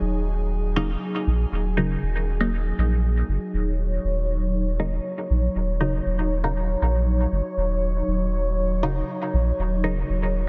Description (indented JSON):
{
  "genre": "dub techno",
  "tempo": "119 BPM",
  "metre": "4/4",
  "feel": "straight",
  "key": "Eb minor",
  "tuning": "A4 = 440 Hz",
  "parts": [
    { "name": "airy breathy pad", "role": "sustained chords", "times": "0.0-10.5 s", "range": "Gb3 to Db5", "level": "-30 LUFS", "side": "equal", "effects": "chorus" },
    { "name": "soft dub sub bass", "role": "bass", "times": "0.0-10.5 s", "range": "Eb1 to Bb1", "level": "-26 LUFS", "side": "equal", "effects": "none" },
    { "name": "filtered dub chord stab", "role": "stabs", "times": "0.8-10.4 s", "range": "Db3 to Eb4", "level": "-31 LUFS", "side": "equal", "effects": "phaser, dub echo" }
  ],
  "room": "light reverb",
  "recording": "dense, heavily limited modern master",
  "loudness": "-24 LUFS",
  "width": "mono",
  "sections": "0.0-3.5 A section; 3.5-10.5 A section",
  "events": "none",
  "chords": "0.0 Ebm7"
}